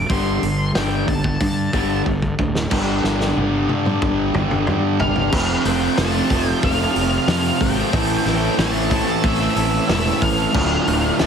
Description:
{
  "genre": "quiet-loud alternative rock",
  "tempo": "92 BPM",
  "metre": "4/4",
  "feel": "straight",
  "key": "unclear",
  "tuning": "A4 = 440 Hz",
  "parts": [
    { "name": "octave-fuzz lead guitar", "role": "melody", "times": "0.0-11.3 s", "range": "E5 to C6", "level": "-25 LUFS", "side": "equal", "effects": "distortion, plate reverb" },
    { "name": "distorted electric guitar", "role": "riff", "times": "0.0-11.3 s", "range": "D2 to A4", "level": "-24 LUFS", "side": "right 12 dB", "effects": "distortion" },
    { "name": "overdriven electric guitar", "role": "riff", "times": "0.0-11.3 s", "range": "D2 to A4", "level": "-25 LUFS", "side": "left 13 dB", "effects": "none" },
    { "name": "fuzz fingered electric bass", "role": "bass", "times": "0.0-11.3 s", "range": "D1 to G2", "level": "-23 LUFS", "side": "equal", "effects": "overdrive" },
    { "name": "loose indie drum kit", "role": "drums", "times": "0.1-11.3 s", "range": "crash cymbal, hi-hat, kick drum, snare drum, toms", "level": "-23 LUFS", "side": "equal", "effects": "none" },
    { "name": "percussive tonewheel organ", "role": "sustained chords", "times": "2.7-11.3 s", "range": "F4 to D6", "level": "-31 LUFS", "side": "equal", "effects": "chorus vibrato, slow rotary speaker, plate reverb" },
    { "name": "thick fuzz guitar", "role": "riff", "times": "2.7-11.3 s", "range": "D2 to A3", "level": "-24 LUFS", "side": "equal", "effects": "distortion" }
  ],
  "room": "light reverb",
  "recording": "heavily compressed radio sound, multiband compression",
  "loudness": "-16 LUFS",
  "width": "side -7 dB against mid",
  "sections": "0.0-2.7 A section; 2.7-5.3 B section; 5.3-11.3 C section",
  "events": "lead electric guitar solo 0.0-2.7; drum fill 2.1-2.7, 2.7-5.3",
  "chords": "0.1 Gsus2; 5.3 F; 7.9 Amadd9; 10.5 Dm",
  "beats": "| 0.10 0.75 1.40 2.06 | 2.71 3.36 4.01 4.67 | 5.32 5.97 6.62 7.28 | 7.93 8.58 9.23 9.89 | 10.54 11.20"
}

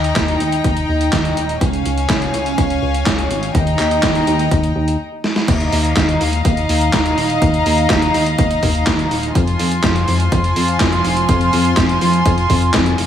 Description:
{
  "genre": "italo disco",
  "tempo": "124 BPM",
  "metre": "4/4",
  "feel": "straight",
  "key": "unclear",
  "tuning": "A4 = 441 Hz",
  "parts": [
    { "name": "rich studio string section", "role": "sustained chords", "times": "0.0-13.1 s", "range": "F3 to C6", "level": "-18 LUFS", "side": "equal", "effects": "none" },
    { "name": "chorused synth bass", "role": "bass", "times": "0.0-13.1 s", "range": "Eb1 to F2", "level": "-18 LUFS", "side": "left 1 dB", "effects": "tape echo" },
    { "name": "dusty soul sampler-style drum kit", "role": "drums", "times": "0.0-13.1 s", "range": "crash cymbal, handclaps, hi-hat, snare drum", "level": "-20 LUFS", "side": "right 1 dB", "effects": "overdrive, small room ambience, gated reverb" },
    { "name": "electronic kick drum", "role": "drums", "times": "0.2-12.8 s", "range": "none", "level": "-20 LUFS", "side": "equal", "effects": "small room ambience" }
  ],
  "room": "light reverb, digital ambience",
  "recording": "none",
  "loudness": "-13 LUFS",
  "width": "side -9 dB against mid",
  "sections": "0.0-5.5 A section; 5.5-13.1 B section",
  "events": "stop 5.0-5.5; drum fill 5.2",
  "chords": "0.0 Eb; 1.6 Db; 3.5 Eb; 5.5 Ebsus2; 9.4 Fm",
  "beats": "0.16 0.64 1.13 | 1.61 2.10 2.58 3.06 | 3.55 4.03 4.51 5.00 | 5.48 5.97 6.45 6.93 | 7.42 7.90 8.39 8.87 | 9.35 9.84 10.32 10.80 | 11.29 11.77 12.26 12.74"
}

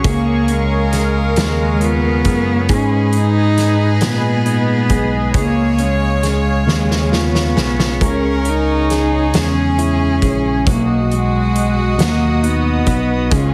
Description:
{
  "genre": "six-eight pop ballad",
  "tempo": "45 BPM (dotted quarters)",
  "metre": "6/8",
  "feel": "straight",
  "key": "unclear",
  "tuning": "A4 = 439 Hz",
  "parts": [
    { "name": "dark cello", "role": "melody", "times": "0.0-13.5 s", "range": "G#3 to D#4", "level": "-21 LUFS", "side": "equal", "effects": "delay" },
    { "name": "warm chamber violin section", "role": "second line", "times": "0.0-13.5 s", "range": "E#4 to C#5", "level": "-27 LUFS", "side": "equal", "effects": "none" },
    { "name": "fingerpicked plugged-in steel-string acoustic guitar", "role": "accompaniment", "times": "0.0-13.5 s", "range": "G#2 to B4", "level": "-24 LUFS", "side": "equal", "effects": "none" },
    { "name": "sweeping resonant pad", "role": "sustained chords", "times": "0.0-13.5 s", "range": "G#4 to D#6", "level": "-27 LUFS", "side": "equal", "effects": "chorus" },
    { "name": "bell-like tine electric piano", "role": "bass", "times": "0.0-13.5 s", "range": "A#1 to A#2", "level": "-20 LUFS", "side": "equal", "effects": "none" },
    { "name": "loose indie drum kit", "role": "drums", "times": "0.0-13.5 s", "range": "hi-hat, kick drum, snare drum", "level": "-22 LUFS", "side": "equal", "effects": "none" }
  ],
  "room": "light reverb, small room reverb",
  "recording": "heavily compressed radio sound",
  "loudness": "-15 LUFS",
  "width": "mono",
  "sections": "0.0-13.5 A section",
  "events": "drum fill 6.7-8.0",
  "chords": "0.0 C#; 2.7 G#m; 5.3 C#; 8.0 C#m; 10.7 B",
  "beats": "| 0.05 1.38 | 2.70 4.02 | 5.34 6.67 | 8.01 9.34 | 10.67 11.99 | 13.31"
}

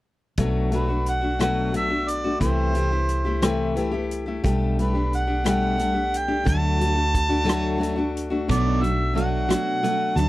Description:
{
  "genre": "folk rock and heartland rock",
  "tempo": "59 BPM (dotted quarters)",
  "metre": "6/8",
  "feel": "straight",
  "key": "unclear",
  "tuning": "A4 = 445 Hz",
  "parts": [
    { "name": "picked steel-string acoustic guitar", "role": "accompaniment", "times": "0.4-10.3 s", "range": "B2 to G4", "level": "-24 LUFS", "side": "left 2 dB", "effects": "none" },
    { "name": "hollow-body short-scale fingered electric bass", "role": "bass", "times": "0.4-10.3 s", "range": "B1 to D2", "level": "-25 LUFS", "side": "right 1 dB", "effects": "none" },
    { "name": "vintage drum kit", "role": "drums", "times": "0.4-10.3 s", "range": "hi-hat, kick drum, rim click", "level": "-26 LUFS", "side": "equal", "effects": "none" },
    { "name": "mellow harmonica", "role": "melody", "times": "0.8-10.3 s", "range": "B4 to A5", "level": "-26 LUFS", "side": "right 1 dB", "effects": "none" },
    { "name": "crunchy overdriven guitar", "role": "riff", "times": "8.5-10.3 s", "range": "B2 to B3", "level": "-28 LUFS", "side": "right 3 dB", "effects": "none" }
  ],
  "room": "small room ambience",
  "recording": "dry, close 1970s-style studio recording",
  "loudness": "-20 LUFS",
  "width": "side -17 dB against mid",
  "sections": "0.4-8.5 A section; 8.5-10.3 B section",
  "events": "none",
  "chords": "0.4 Bm7; 2.4 C6; 4.4 Gadd9/B; 6.5 D; 8.5 Bm7",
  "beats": "| 0.39 1.40 | 2.42 3.43 | 4.44 5.46 | 6.47 7.48 | 8.49 9.51"
}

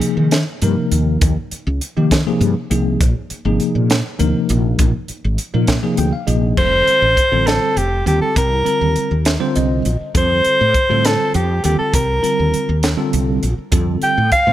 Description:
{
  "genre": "electric jazz fusion",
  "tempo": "67 BPM (dotted quarters)",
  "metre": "6/8",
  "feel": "straight",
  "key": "unclear",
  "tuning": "A4 = 440 Hz",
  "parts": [
    { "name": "bell-like tine electric piano", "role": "accompaniment", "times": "0.0-14.5 s", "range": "C3 to G5", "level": "-20 LUFS", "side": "left 1 dB", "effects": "fast stereo tremolo" },
    { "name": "crisp fusion drum kit", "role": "drums", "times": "0.0-14.5 s", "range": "crash cymbal, hi-hat, kick drum, snare drum", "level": "-20 LUFS", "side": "equal", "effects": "none" },
    { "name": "woody fretless electric bass", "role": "bass", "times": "0.2-14.5 s", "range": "F1 to Eb3", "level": "-18 LUFS", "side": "equal", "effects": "ensemble chorus" },
    { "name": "warm soprano saxophone", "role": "melody", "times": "6.6-14.5 s", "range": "G4 to G5", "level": "-16 LUFS", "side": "equal", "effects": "none" }
  ],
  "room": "light reverb",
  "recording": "none",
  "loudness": "-14 LUFS",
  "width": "side -13 dB against mid",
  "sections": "0.0-6.6 A section; 6.6-14.5 B section",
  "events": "tine electric piano fill 5.7-6.6, 9.3-10.2",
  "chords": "0.0 Ebsus4; 3.0 Bb9sus4; 6.6 F69; 8.4 Cm9; 10.2 F69; 11.9 Cm9; 13.7 F69",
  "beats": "0.32 | 1.21 2.11 | 3.00 3.90 | 4.79 5.68 | 6.58 7.47 | 8.37 9.26 | 10.15 11.04 | 11.94 12.83 | 13.72"
}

